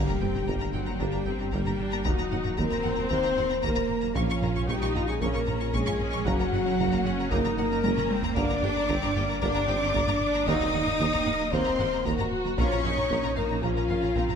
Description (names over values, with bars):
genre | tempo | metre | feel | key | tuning
cinematic, hybrid orchestral and electronic film score | 114 BPM | 4/4 | straight | G harmonic minor | A4 = 440 Hz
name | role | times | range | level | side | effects
warm symphonic violin section | second line | 0.0-14.4 s | F5 to Eb6 | -36 LUFS | left 3 dB | none
rich symphonic viola section | accompaniment | 0.0-14.4 s | Bb3 to Gb4 | -35 LUFS | equal | none
mellow French horn section | sustained chords | 0.0-14.4 s | F4 to Eb5 | -30 LUFS | left 4 dB | none
mellow trombone section | sustained chords | 0.0-13.8 s | C#3 to Bb3 | -41 LUFS | right 4 dB | none
soft round pluck | arpeggios | 0.0-14.4 s | Eb3 to Bb4 | -39 LUFS | left 3 dB | chorus, ping-pong delay
rich symphonic cello section | bass | 0.0-14.4 s | F3 to Eb4 | -32 LUFS | right 5 dB | none
saturated sub bass | bass | 0.0-14.4 s | Eb1 to Bb1 | -36 LUFS | equal | none
impact | sound effects | 0.0-2.1 s | none | -36 LUFS | equal | none
warm symphonic violin section | melody | 0.1-14.3 s | F5 to Db6 | -36 LUFS | left 4 dB | none
rich chamber double bass section | bass | 0.1-14.3 s | F#1 to Eb2 | -35 LUFS | right 5 dB | none
mellow tuba | bass | 0.2-14.2 s | F#1 to Eb2 | -35 LUFS | right 5 dB | none
taiko ensemble | drums | 0.2-14.4 s | none | -33 LUFS | equal | none
room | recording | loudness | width
moderate concert hall reverb, RT60 2.1 s | none | -24 LUFS | side -7 dB against mid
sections
0.0-14.4 A section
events
impact 0.0-2.1; drum fill 7.8-8.4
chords
0.0 Gm; 2.1 Ebm; 4.2 Bbm; 6.3 F#; 8.4 Gm; 10.5 Ebm; 12.6 Bbm